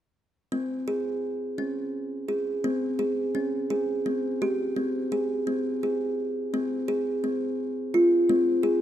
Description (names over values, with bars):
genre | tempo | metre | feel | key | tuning
contemporary instrumental, contemporary | 170 BPM (eighths) | 11/8 | straight | unclear | A4 = 436 Hz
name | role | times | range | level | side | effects
kalimba | solo | 0.5-8.8 s | C4 to Ab4 | -24 LUFS | equal | none
room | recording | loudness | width
light reverb | close, detailed microphones | -25 LUFS | side -11 dB against mid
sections
0.5-8.8 A section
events
none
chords
none